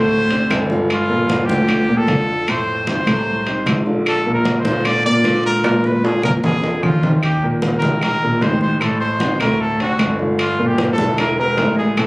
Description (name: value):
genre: Afro-Cuban jazz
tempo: 152 BPM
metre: 4/4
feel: straight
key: G minor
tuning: A4 = 441 Hz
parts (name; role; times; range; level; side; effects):
- clear trumpet; melody; 0.0-12.1 s; F4 to D5; -20 LUFS; equal; plate reverb
- warm grand piano; accompaniment; 0.0-12.1 s; A2 to B4; -20 LUFS; equal; none
- warm concert grand piano; bass; 0.0-12.1 s; E1 to Bb2; -21 LUFS; equal; none
- congas; percussion; 0.1-12.1 s; none; -23 LUFS; equal; none
- timbales; percussion; 0.3-12.1 s; none; -26 LUFS; right 1 dB; none
- claves; percussion; 0.5-12.1 s; none; -27 LUFS; equal; none
room: moderate studio reverb, RT60 0.7 s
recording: recorded on a phone in the room, club reverb, lossy compression artefacts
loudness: -14 LUFS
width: side -24 dB against mid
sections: 0.9-12.1 A section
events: drum fill 5.6-7.2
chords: 0.1 D5; 0.9 Gm9; 2.5 F6; 4.1 Bb; 5.6 Bb7; 7.2 Eb; 8.8 Adim; 9.6 D7; 10.4 Gm7; 11.2 E5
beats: 0.12 0.51 | 0.90 1.30 1.69 2.09 | 2.48 2.88 3.27 3.67 | 4.06 4.46 4.85 5.25 | 5.64 6.04 6.43 6.83 | 7.22 7.62 8.02 8.41 | 8.81 9.20 9.60 9.99 | 10.39 10.78 11.18 11.57 | 11.97